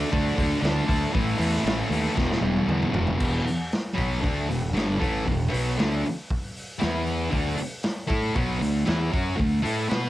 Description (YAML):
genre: garage rock duo or trio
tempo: 116 BPM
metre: 4/4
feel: straight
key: unclear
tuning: A4 = 438 Hz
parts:
  - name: thick fuzz guitar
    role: riff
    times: 0.0-10.1 s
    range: E2 to B4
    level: -25 LUFS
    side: equal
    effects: distortion
  - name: fuzz fingered electric bass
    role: bass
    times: 0.0-10.1 s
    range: E1 to B2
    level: -28 LUFS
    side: equal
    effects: overdrive
  - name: raw garage drum kit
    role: drums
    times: 0.1-10.0 s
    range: crash cymbal, hi-hat, kick drum, snare drum, toms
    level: -28 LUFS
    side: equal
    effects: cassette tape
room: studio reverb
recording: home recording on cassette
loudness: -22 LUFS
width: side -15 dB against mid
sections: 0.0-3.2 A section; 3.2-10.1 B section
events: drum fill 2.2-3.2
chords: 0.0 D5; 1.1 A5; 2.2 E5; 7.3 D5